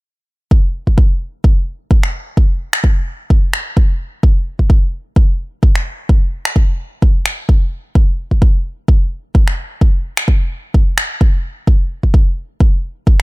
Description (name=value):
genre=house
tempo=129 BPM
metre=4/4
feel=swing 55% on 16ths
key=none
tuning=none
part: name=electronic kick drum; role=drums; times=0.5-13.2 s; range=none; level=-11 LUFS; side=equal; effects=small room ambience
part: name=electronic finger snaps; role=drums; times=2.0-13.2 s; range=none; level=-19 LUFS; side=equal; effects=small room ambience
room=little or no reverb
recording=none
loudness=-12 LUFS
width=side -23 dB against mid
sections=0.5-13.2 A section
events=none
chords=none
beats=| 0.51 0.98 1.44 1.91 | 2.37 2.84 3.30 3.77 | 4.23 4.70 5.16 5.63 | 6.09 6.56 7.02 7.49 | 7.95 8.42 8.88 9.35 | 9.81 10.28 10.74 11.21 | 11.68 12.14 12.61 13.07